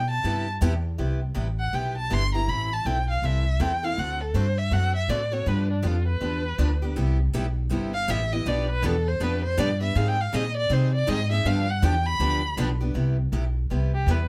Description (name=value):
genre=acoustic string swing (jazz manouche)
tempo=161 BPM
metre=4/4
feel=swing 61% on 8ths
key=C major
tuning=A4 = 440 Hz
part: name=warm violin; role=melody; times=0.0-14.3 s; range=D4 to C6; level=-30 LUFS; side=equal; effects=none
part: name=upright bass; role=bass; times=0.0-14.3 s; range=G1 to C3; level=-27 LUFS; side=equal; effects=none
part: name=picked steel-string acoustic guitar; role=accompaniment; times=0.2-14.2 s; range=B2 to B4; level=-35 LUFS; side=equal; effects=none
part: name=picked steel-string acoustic guitar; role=accompaniment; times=0.2-0.7, 7.0-12.7 s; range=B2 to B4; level=-35 LUFS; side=equal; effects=none
room=light reverb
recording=close, detailed microphones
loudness=-25 LUFS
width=mono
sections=1.0-12.9 A section; 12.9-14.3 A section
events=violin solo 0.0-12.9, 12.9-14.3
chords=0.0 Cmaj7; 2.5 Am7; 4.0 D7; 5.5 G7; 7.0 Cmaj7; 8.5 G7/B; 10.0 Abmaj7; 11.4 G7; 12.9 Cmaj7